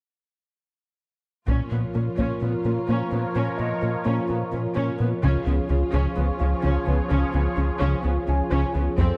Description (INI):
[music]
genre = cinematic, hybrid orchestral and electronic film score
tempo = 128 BPM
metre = 4/4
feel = straight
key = Bb phrygian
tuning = A4 = 440 Hz
[part]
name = rich symphonic viola section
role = accompaniment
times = 1.5-9.2 s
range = Cb4 to A4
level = -32 LUFS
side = equal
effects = none
[part]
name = sweeping resonant pad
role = sustained chords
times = 1.5-9.2 s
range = F3 to Db5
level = -31 LUFS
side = equal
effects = chorus
[part]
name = tight sequenced synth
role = arpeggios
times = 1.5-9.1 s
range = Db3 to Bb4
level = -34 LUFS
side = equal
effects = none
[part]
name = round analog bass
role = riff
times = 1.5-9.1 s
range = Db2 to Bb2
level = -27 LUFS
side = equal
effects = none
[part]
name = rich symphonic cello section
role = bass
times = 1.5-9.1 s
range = F2 to Db3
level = -33 LUFS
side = equal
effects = none
[part]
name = taiko ensemble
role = drums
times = 1.5-2.4, 5.2-6.2, 9.0-9.2 s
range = none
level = -30 LUFS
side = equal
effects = none
[part]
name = warm concert grand piano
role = texture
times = 2.2-9.2 s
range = F4 to Ab5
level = -40 LUFS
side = equal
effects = delay
[sound]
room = moderate scoring stage reverb, RT60 1.9 s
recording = dark, warm production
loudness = -24 LUFS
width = mono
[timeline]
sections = 1.5-9.2 A section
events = none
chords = 1.5 Bbm; 5.2 Db